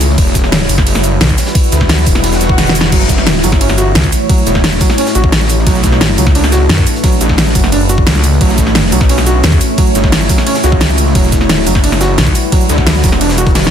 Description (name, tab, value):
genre	dark technical drum and bass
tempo	175 BPM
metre	4/4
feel	straight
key	unclear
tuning	A4 = 441 Hz
part	deep dark ambient pad	sustained chords	0.0-13.7 s	G3 to C#5	-17 LUFS	equal	chorus, built-in reverb, sidechain pumping
part	wide detuned saw bass	bass	0.0-13.7 s	E1 to D2	-13 LUFS	equal	chorus, tube saturation
part	crunchy breakbeat drum kit	drums	0.0-13.6 s	hi-hat, snare drum	-26 LUFS	left 1 dB	none
part	dubstep drum kit	drums	0.0-13.7 s	cabasa, crash cymbal, hi-hat, ride cymbal, snare drum	-14 LUFS	equal	overdrive
part	electronic kick drum	drums	0.2-13.5 s	none	-12 LUFS	equal	overdrive
part	growling FM bass	bass	1.2-1.4, 4.0-4.1, 6.7-9.6, 12.2-12.3 s	F#1 to F#2	-12 LUFS	equal	none
part	swell	sound effects	2.3-2.9 s	none	-21 LUFS	left 1 dB	none
part	felt-muted upright piano	arpeggios	2.9-13.5 s	F#3 to F#4	-18 LUFS	right 3 dB	sidechain pumping, ping-pong delay
room	digital ambience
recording	dense, heavily limited modern master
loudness	-8 LUFS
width	side -8 dB against mid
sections	0.0-13.7 A section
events	swell 2.3-2.9; drum fill 2.6-2.9, 13.6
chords	0.2 Emadd9; 2.9 F#m7; 5.7 Bm7; 8.4 A; 11.2 Emadd9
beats	| 0.18 0.52 0.87 1.21 | 1.55 1.90 2.24 2.58 | 2.92 3.27 3.61 3.95 | 4.29 4.64 4.98 5.32 | 5.67 6.01 6.35 6.70 | 7.04 7.38 7.72 8.07 | 8.41 8.75 9.10 9.44 | 9.78 10.12 10.47 10.81 | 11.15 11.49 11.84 12.18 | 12.52 12.87 13.21 13.55